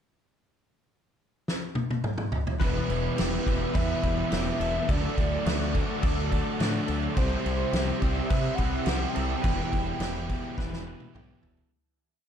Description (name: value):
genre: rock, shoegaze and dream pop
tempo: 106 BPM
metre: 4/4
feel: straight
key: E minor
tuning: A4 = 440 Hz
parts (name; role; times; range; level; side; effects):
- loose indie drum kit; drums; 1.5-11.7 s; crash cymbal, kick drum, snare drum, toms; -29 LUFS; equal; none
- pure sine lead; melody; 2.6-11.1 s; B4 to G5; -34 LUFS; equal; chorus, analog delay
- string machine, violas; sustained chords; 2.6-11.7 s; G4 to E6; -39 LUFS; left 1 dB; ensemble chorus
- direct-recorded clean electric guitar; arpeggios; 2.6-11.7 s; F#4 to C5; -41 LUFS; left 8 dB; ensemble chorus, analog delay
- crunchy overdriven guitar; riff; 2.6-11.7 s; E2 to D4; -36 LUFS; equal; none
- overdriven electric guitar; riff; 2.6-11.7 s; C3 to E4; -34 LUFS; right 11 dB; reverse reverb
- thick fuzz guitar; riff; 2.6-11.7 s; E2 to D4; -35 LUFS; left 9 dB; distortion, wide subtle chorus
- growling fingered electric bass; bass; 2.6-11.6 s; E1 to C3; -31 LUFS; equal; overdrive
room: studio ambience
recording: dark, warm production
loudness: -25 LUFS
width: side -8 dB against mid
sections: 0.3-2.6 pickup bar; 2.6-11.7 A section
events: drum fill 1.5-2.6, 10.6-11.7; fade-out 9.4-11.7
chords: 0.3 N.C.; 2.6 Em; 4.9 D; 7.2 C; 9.4 Em